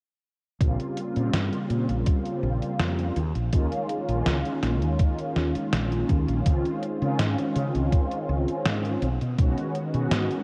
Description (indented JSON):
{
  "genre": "vaporwave",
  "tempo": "82 BPM",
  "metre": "4/4",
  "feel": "straight",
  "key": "Bb dorian",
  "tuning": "A4 = 441 Hz",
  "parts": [
    { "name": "mellow synth brass", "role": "accompaniment", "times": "0.6-10.4 s", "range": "Db3 to F#4", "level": "-30 LUFS", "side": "equal", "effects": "phaser, ensemble chorus, analog delay" },
    { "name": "woody fretless electric bass", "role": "bass", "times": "0.6-10.3 s", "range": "Bb1 to Db3", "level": "-29 LUFS", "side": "equal", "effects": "none" },
    { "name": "detuned 8-bit digital drum machine", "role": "drums", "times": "0.6-10.4 s", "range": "hi-hat, snare drum", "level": "-32 LUFS", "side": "equal", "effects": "gated reverb" },
    { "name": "electronic kick drum", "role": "drums", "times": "0.6-9.5 s", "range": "none", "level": "-25 LUFS", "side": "equal", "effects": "none" }
  ],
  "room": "light reverb, digital ambience",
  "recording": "cassette tape",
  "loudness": "-26 LUFS",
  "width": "mono",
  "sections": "0.6-10.4 A section",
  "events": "none",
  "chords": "0.6 Bbm69; 3.2 Eb9sus4; 6.5 Dbmaj9; 9.0 B6"
}